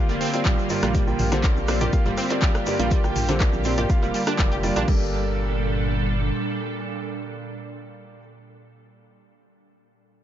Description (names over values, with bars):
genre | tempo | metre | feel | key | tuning
progressive house | 122 BPM | 4/4 | straight | G minor | A4 = 440 Hz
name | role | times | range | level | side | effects
evolving wavetable pad | sustained chords | 0.0-8.2 s | Bb2 to A4 | -29 LUFS | right 2 dB | ensemble chorus, built-in reverb, sidechain pumping
warm concert grand piano | stabs | 0.0-8.2 s | Bb3 to G5 | -28 LUFS | equal | sidechain pumping, tape echo
analog pluck | arpeggios | 0.1-5.1 s | G2 to G4 | -29 LUFS | right 3 dB | chorus, sidechain pumping, tape echo
dark detuned saw bass | bass | 0.1-6.3 s | F1 to Bb1 | -27 LUFS | equal | sidechain pumping
tube shaker | percussion | 0.1-4.9 s | none | -42 LUFS | left 4 dB | none
deep house drum kit | drums | 0.2-5.0 s | crash cymbal, handclaps, hi-hat | -31 LUFS | left 1 dB | overdrive
electronic kick drum | drums | 0.5-5.0 s | none | -22 LUFS | equal | overdrive
punchy analog drum machine | percussion | 0.5-4.9 s | congas, rim click, toms | -31 LUFS | right 1 dB | overdrive, sidechain pumping on snare, sidechain pumping on toms, sidechain pumping on perc
room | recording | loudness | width
little or no reverb | nothing above 7.5 kHz | -20 LUFS | side -11 dB against mid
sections
0.0-4.9 A section; 4.9-8.8 B section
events
drop 0.0-4.9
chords
0.0 Bb6; 4.9 Gmadd9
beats
0.45 | 0.95 1.44 1.93 2.42 | 2.91 3.40 3.90 4.39 | 4.88 5.37 5.86 6.36 | 6.85 7.34 7.83